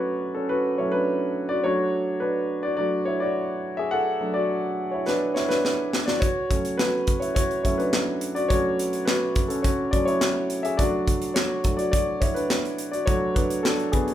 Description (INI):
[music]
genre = piano-driven pop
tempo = 105 BPM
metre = 4/4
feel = straight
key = unclear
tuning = A4 = 440 Hz
[part]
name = warm grand piano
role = accompaniment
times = 0.0-14.1 s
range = F#3 to F#5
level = -23 LUFS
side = equal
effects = none
[part]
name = modern studio drum kit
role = drums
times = 5.1-14.1 s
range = handclaps, hi-hat, kick drum, snare drum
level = -25 LUFS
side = equal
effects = none
[sound]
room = moderate large studio reverb, RT60 0.9 s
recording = band playing live in one room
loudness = -22 LUFS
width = side -11 dB against mid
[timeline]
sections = 0.0-14.1 A section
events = grand piano solo 0.0-14.1; drum fill 5.1-6.2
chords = 0.0 F#m; 1.6 Bm7/F#